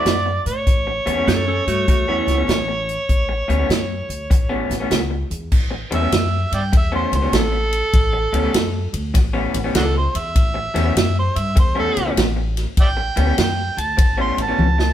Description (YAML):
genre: electric blues shuffle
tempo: 99 BPM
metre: 4/4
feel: swing 66% on 8ths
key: A mixolydian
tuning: A4 = 440 Hz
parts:
  - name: overdriven harmonica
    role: melody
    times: 0.0-14.9 s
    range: D4 to C6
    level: -22 LUFS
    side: right 2 dB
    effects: none
  - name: electric guitar through a small old amp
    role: riff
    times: 0.0-14.8 s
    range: A2 to F#4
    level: -24 LUFS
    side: left 3 dB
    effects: none
  - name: upright bass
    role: bass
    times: 0.1-14.9 s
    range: A1 to A2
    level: -22 LUFS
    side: left 1 dB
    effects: none
  - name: natural country drum kit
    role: drums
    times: 0.1-14.9 s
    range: crash cymbal, hi-hat, kick drum, ride cymbal, snare drum, toms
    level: -19 LUFS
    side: equal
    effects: none
  - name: clean lap steel guitar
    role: second line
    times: 1.3-2.4 s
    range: A3 to A4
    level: -23 LUFS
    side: right 3 dB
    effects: none
room: light reverb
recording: band playing live in one room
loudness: -16 LUFS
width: side -11 dB against mid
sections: 0.0-5.5 A section; 5.5-14.9 B section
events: harmonica solo 5.5-14.9; drum fill 14.6-14.9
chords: 0.0 D9; 0.7 A9